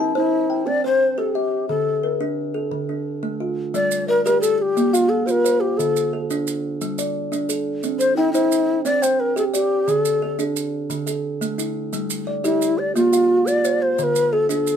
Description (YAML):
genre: southern african traditional, mbira-style interlocking cycle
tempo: 117 BPM (dotted quarters)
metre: 12/8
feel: straight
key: G equiheptatonic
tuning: A4 = 440 Hz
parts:
  - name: breathy mellow low Native American-style wooden flute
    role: melody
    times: 0.0-14.8 s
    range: E4-42c to D5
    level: -18 LUFS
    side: left 2 dB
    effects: none
  - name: kalimba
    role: arpeggios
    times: 0.0-14.8 s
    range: D3 to A5-29c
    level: -23 LUFS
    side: right 3 dB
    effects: none
  - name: maracas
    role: percussion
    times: 3.7-14.8 s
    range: none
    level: -30 LUFS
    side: right 8 dB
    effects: none
room: light reverb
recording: minimal, uncompressed stereo recording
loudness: -18 LUFS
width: side -8 dB against mid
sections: 0.0-3.7 A section; 3.7-14.8 A section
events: none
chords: 0.0 C; 1.7 Dm; 3.7 G5; 4.8 Bb5; 5.8 D5; 6.8 G5; 7.8 C; 9.9 D5; 11.9 G5; 13.0 Bb; 14.0 D5